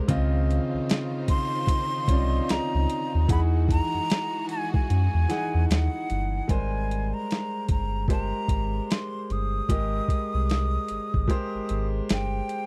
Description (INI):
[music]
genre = R&B, neo-soul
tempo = 75 BPM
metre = 4/4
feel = swing 60% on 16ths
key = unclear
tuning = A4 = 441 Hz
[part]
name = warm concert grand piano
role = accompaniment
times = 0.0-12.7 s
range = Db3 to F#5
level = -33 LUFS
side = equal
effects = none
[part]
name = rich studio string section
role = sustained chords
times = 0.0-6.5 s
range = Eb3 to C5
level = -40 LUFS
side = equal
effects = none
[part]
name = round analog bass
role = bass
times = 0.1-12.4 s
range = G1 to F#2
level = -28 LUFS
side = equal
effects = none
[part]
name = boom bap sampler-style drum kit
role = drums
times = 0.1-12.7 s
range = hi-hat, kick drum, snare drum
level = -28 LUFS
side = equal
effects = none
[part]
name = breathy jazz flute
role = melody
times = 1.3-12.7 s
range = F#5 to Eb6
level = -34 LUFS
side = equal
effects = none
[sound]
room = little or no reverb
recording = dry, close 1970s-style studio recording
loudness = -26 LUFS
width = mono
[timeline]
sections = 0.0-6.5 A section; 6.5-12.7 B section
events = kick muted 4.9-6.5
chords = 0.1 Dbmaj9; 3.3 Emaj9; 6.5 Abmaj9